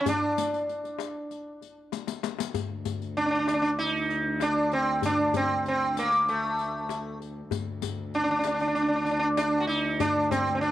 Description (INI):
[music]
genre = Arabic maqam ensemble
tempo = 97 BPM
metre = 4/4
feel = straight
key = D maqam hijaz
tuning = A4 = 440 Hz
[part]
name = sitar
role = melody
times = 0.0-10.7 s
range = A3 to F#4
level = -25 LUFS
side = right 1 dB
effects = none
[part]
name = darbuka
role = percussion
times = 0.1-10.7 s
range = none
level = -35 LUFS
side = left 6 dB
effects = none
[part]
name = riq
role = percussion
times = 0.1-10.7 s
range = none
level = -37 LUFS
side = left 12 dB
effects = none
[part]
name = warm cello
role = drone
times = 2.6-10.7 s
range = D2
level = -36 LUFS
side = left 1 dB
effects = none
[sound]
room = light reverb, studio reverb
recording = 1960s-style stereo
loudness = -25 LUFS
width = side -13 dB against mid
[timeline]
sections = 0.0-2.5 A section; 2.5-10.7 B section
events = drum fill 1.9-2.5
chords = none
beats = | 0.06 0.68 1.30 1.93 | 2.54 3.17 3.79 4.41 | 5.03 5.65 6.27 6.89 | 7.51 8.13 8.76 9.38 | 10.00 10.62